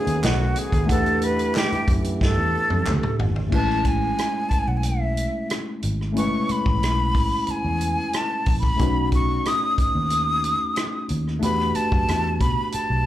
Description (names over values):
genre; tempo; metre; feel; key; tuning
lush 1970s-style soul; 91 BPM; 4/4; straight; A major; A4 = 439 Hz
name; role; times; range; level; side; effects
breathy concert flute; melody; 0.0-13.1 s; F#4 to D#6; -24 LUFS; left 1 dB; plate reverb, slapback echo
tine electric piano; accompaniment; 0.0-13.1 s; G#3 to F#5; -27 LUFS; left 1 dB; overdrive, phaser, plate reverb, slapback echo
mellow French horn section; sustained chords; 0.0-3.5 s; D#3 to G4; -32 LUFS; right 1 dB; plate reverb
vintage muted fingered electric bass; bass; 0.1-13.1 s; G#1 to B2; -24 LUFS; equal; none
vintage drum kit; drums; 0.1-12.9 s; crash cymbal, hi-hat, kick drum, rim click, snare drum, toms; -25 LUFS; equal; none
group handclap; percussion; 0.2-3.0 s; none; -34 LUFS; right 2 dB; none
room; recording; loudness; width
light reverb; live gig heard through the venue's PA, club reverb; -20 LUFS; side -13 dB against mid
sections
0.0-3.5 A section; 3.5-13.1 B section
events
drum fill 2.2-3.5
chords
0.0 B7; 0.9 Em11; 3.5 Amaj9; 8.8 B7; 11.4 Em11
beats
0.23 | 0.89 1.55 2.21 2.87 | 3.53 4.18 4.84 5.50 | 6.16 6.82 7.48 8.13 | 8.79 9.45 10.11 10.77 | 11.42 12.08 12.74